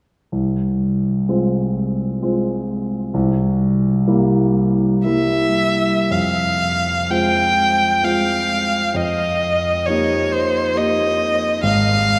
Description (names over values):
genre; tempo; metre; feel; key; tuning
classical, romantic duo for violin and grand piano; 54-69 BPM; 3/4; rubato; F minor; A4 = 440 Hz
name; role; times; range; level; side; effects
warm concert grand piano; accompaniment; 0.3-12.2 s; Ab1 to G4; -20 LUFS; equal; none
rich violin; melody; 5.1-12.2 s; C5 to G5; -20 LUFS; equal; none
room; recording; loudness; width
wet cathedral reverb, RT60 5.5 s; recorded in a church or concert hall; -18 LUFS; mono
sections
0.3-6.1 A section; 6.1-12.2 B section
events
none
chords
0.3 Fm/C; 3.1 C7; 6.1 Fm; 9.0 Eb/F; 11.6 N.C.